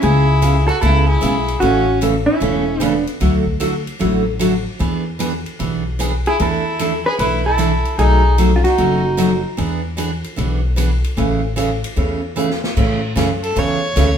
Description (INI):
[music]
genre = country, western swing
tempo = 151 BPM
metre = 4/4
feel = swing 66% on 8ths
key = A major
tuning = A4 = 440 Hz
[part]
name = vintage hollow-body jazz guitar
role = melody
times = 0.0-3.0, 6.3-9.4 s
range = E4 to B4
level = -19 LUFS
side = right 1 dB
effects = none
[part]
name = rich fiddle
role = second line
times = 0.0-3.0, 6.3-9.4, 13.4-14.2 s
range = C#4 to C#5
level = -22 LUFS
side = equal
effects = none
[part]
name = picked steel-string acoustic guitar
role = accompaniment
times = 0.0-14.1 s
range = B2 to A4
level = -20 LUFS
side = right 2 dB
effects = none
[part]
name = upright bass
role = bass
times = 0.0-14.2 s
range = E1 to A2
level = -18 LUFS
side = left 1 dB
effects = none
[part]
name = swinging big-band drum kit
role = drums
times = 0.0-14.1 s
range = crash cymbal, hi-hat, kick drum, ride cymbal, snare drum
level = -28 LUFS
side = left 1 dB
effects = none
[sound]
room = wet studio reverb, RT60 0.7 s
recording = band playing live in one room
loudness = -15 LUFS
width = side -8 dB against mid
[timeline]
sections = 0.0-12.8 A section; 12.8-14.2 B section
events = drum fill 12.4-12.8; fiddle solo 12.8-14.2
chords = 0.0 C#m7; 1.6 A; 3.2 Dadd9; 4.8 E7; 6.4 E7sus4; 8.0 B7; 9.6 E7; 11.2 Amaj7